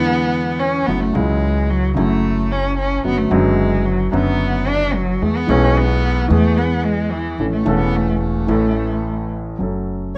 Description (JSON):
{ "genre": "tango", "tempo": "110 BPM", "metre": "4/4", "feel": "rubato", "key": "A major", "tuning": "A4 = 441 Hz", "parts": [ { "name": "warm cello", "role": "second line", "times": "0.0-10.2 s", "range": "E3 to D4", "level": "-22 LUFS", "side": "equal", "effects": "none" }, { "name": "warm concert grand piano", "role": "accompaniment", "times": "0.0-10.2 s", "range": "E1 to A4", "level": "-22 LUFS", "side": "equal", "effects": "none" }, { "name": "upright bass", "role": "bass", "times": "0.0-10.2 s", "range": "E1 to E2", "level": "-24 LUFS", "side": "equal", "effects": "none" } ], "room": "light reverb", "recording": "none", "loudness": "-18 LUFS", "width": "mono", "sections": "0.0-9.6 A section", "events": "cello solo 0.0-9.6", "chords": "0.0 E7; 0.9 F#m7; 3.1 Bm/F#; 5.2 E; 7.4 A; 9.6 F#m" }